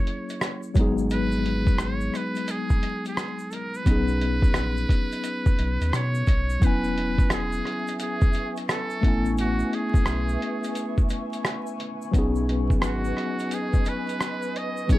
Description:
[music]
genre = lo-fi hip hop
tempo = 87 BPM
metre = 4/4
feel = swing 64% on 16ths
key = B major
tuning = A4 = 441 Hz
[part]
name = trumpet with metal mute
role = melody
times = 0.0-15.0 s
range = F#4 to D#5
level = -31 LUFS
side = right 3 dB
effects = low-pass filter
[part]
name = mellow tine electric piano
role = accompaniment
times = 0.0-15.0 s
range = F#3 to G#5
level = -28 LUFS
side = left 2 dB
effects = medium stereo tremolo, low-pass filter
[part]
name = lo-fi sampler-style drum kit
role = drums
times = 0.1-15.0 s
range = hi-hat, kick drum, rim click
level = -23 LUFS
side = equal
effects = none
[part]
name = tube shaker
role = percussion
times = 0.3-15.0 s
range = none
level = -50 LUFS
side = left 7 dB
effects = none
[part]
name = warm sub bass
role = bass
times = 0.8-15.0 s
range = E1 to B2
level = -27 LUFS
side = equal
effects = none
[part]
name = granular cloud pad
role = sustained chords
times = 7.5-15.0 s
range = B4 to D#6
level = -36 LUFS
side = right 1 dB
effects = built-in reverb, low-pass filter
[sound]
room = little or no reverb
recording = vinyl crackle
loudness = -22 LUFS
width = side -16 dB against mid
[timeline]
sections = 0.0-6.6 A section; 6.6-15.0 B section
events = none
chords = 0.0 F#9; 0.8 G#m7; 3.9 B69; 6.6 E6; 9.0 Amaj9; 12.1 B69

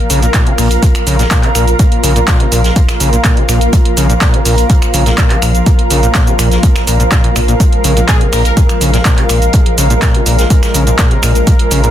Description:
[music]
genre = acid house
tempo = 124 BPM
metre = 4/4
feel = straight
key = Bb minor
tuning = A4 = 441 Hz
[part]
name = warm analog pad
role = sustained chords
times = 0.0-11.9 s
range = F3 to Bb4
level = -20 LUFS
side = equal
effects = chorus, tremolo, sidechain pumping
[part]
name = granular cloud pad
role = texture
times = 0.0-11.9 s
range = Bb4 to Bb5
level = -17 LUFS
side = equal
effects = built-in reverb, sidechain pumping
[part]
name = overdriven acid bass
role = riff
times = 0.1-11.9 s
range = Bb2 to Db3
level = -17 LUFS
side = left 1 dB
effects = distortion, lush chorus, cassette tape, sidechain pumping, digital delay
[part]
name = saturated sub bass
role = bass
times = 0.1-11.9 s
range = Bb1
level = -13 LUFS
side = equal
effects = sidechain pumping
[part]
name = punchy analog drum machine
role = drums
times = 0.1-11.9 s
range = finger snaps, handclaps, hi-hat, shaker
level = -17 LUFS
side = right 1 dB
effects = none
[part]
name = vintage drum kit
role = drums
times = 0.1-11.8 s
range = hi-hat, snare drum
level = -26 LUFS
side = right 2 dB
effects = none
[part]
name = electronic kick drum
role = drums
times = 0.3-11.6 s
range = none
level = -11 LUFS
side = equal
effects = none
[part]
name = plucky unison lead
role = melody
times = 8.1-8.5 s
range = Ab4 to Bb4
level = -24 LUFS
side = right 1 dB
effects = phaser, lush chorus, dub echo
[sound]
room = light reverb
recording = dense, heavily limited modern master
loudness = -8 LUFS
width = side -11 dB against mid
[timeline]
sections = 0.0-11.9 A section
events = none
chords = 0.0 Bb5

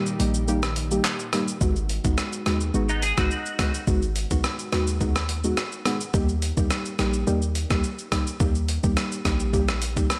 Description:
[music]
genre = dancehall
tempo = 106 BPM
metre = 4/4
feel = straight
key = G# minor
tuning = A4 = 439 Hz
[part]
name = deep mellow chord stab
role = accompaniment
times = 0.0-10.1 s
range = G3 to G4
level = -30 LUFS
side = equal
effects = chorus, sidechain pumping
[part]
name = lush unison pad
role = sustained chords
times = 0.0-1.6 s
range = A#2 to G4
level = -35 LUFS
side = equal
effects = chorus, sidechain pumping
[part]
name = breakbeat sampler-style drum kit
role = drums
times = 0.1-10.2 s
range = handclaps, hi-hat, kick drum, rim click, shaker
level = -28 LUFS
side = equal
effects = none
[part]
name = hard-hitting 808-style bass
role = bass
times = 0.2-10.1 s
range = G#1 to D#2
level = -28 LUFS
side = equal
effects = none
[part]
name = clean electric guitar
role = arpeggios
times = 2.9-3.8 s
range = B3 to G#4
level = -30 LUFS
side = equal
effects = ensemble chorus
[sound]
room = moderate plate reverb, RT60 1.8 s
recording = dreamy mix soaked in reverb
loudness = -25 LUFS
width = mono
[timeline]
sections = 0.0-1.6 A section; 1.6-10.2 B section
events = break 0.0-1.6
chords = 0.0 D#; 1.6 G#m7; 6.1 D#

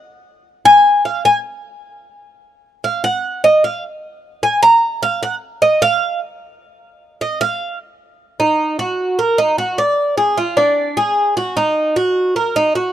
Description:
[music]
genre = latin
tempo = 151 BPM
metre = 4/4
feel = straight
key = Eb harmonic minor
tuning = A4 = 436 Hz
[part]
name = Cuban tres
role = solo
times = 0.7-12.9 s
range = D4 to Bb5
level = -13 LUFS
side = equal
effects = none
[sound]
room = light reverb, studio ambience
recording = dry, close 1970s-style studio recording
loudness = -13 LUFS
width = side -11 dB against mid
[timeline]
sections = 0.0-8.4 A section; 8.4-12.9 B section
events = Cuban tres solo 0.0-8.4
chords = none

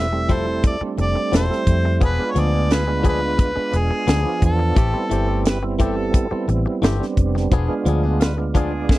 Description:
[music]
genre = straight-eighth soul blues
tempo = 87 BPM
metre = 4/4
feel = straight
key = A minor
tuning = A4 = 441 Hz
[part]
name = clear harmonica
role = melody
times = 0.0-5.4 s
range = G#4 to E5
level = -24 LUFS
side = equal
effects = overdrive
[part]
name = overdriven tonewheel organ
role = accompaniment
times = 0.0-9.0 s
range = F3 to E5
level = -24 LUFS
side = right 4 dB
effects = slow rotary speaker, chorus vibrato
[part]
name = mellow horn section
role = sustained chords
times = 0.0-9.0 s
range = C4 to B4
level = -32 LUFS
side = equal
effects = none
[part]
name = vintage muted fingered electric bass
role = bass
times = 0.0-9.0 s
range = E1 to F2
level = -21 LUFS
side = equal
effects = none
[part]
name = direct-recorded clean electric guitar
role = stabs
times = 0.1-8.9 s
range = E3 to A4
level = -26 LUFS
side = left 6 dB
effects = none
[part]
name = tight funk drum kit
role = drums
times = 0.3-9.0 s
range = hi-hat, kick drum, snare drum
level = -18 LUFS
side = equal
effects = none
[sound]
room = little or no reverb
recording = dry, close 1970s-style studio recording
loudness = -17 LUFS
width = side -17 dB against mid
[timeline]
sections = 0.0-9.0 A section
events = tonewheel organ fill 8.2-9.0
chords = 0.0 Fmaj7; 2.0 E7b9; 4.8 Am7; 7.5 E7b9

